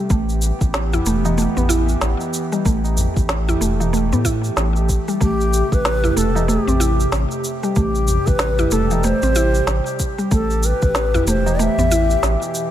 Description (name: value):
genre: organic downtempo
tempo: 94 BPM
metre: 4/4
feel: swing 60% on 16ths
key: A minor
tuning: A4 = 440 Hz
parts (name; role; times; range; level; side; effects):
- warbly tape-like pad; sustained chords; 0.0-12.7 s; B2 to G4; -25 LUFS; right 1 dB; chorus, built-in reverb, sidechain pumping
- mallet-like synth pluck; arpeggios; 0.0-12.1 s; E3 to E4; -22 LUFS; right 1 dB; chorus, ping-pong delay
- round analog bass; bass; 0.1-12.4 s; E1 to A2; -20 LUFS; equal; tube saturation, sidechain pumping
- electronic cabasa and snare drum; drums; 0.1-12.7 s; none; -25 LUFS; equal; none
- electronic kick drum; drums; 0.1-10.9 s; none; -20 LUFS; equal; none
- tabla; percussion; 0.9-12.5 s; none; -28 LUFS; equal; none
- breathy reedy ney; melody; 5.2-12.6 s; G4 to E5; -22 LUFS; left 2 dB; ping-pong delay
room: light reverb, digital ambience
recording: none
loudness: -16 LUFS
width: side -11 dB against mid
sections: 0.0-12.7 A section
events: none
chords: 0.1 Em; 5.2 Am7; 10.3 Em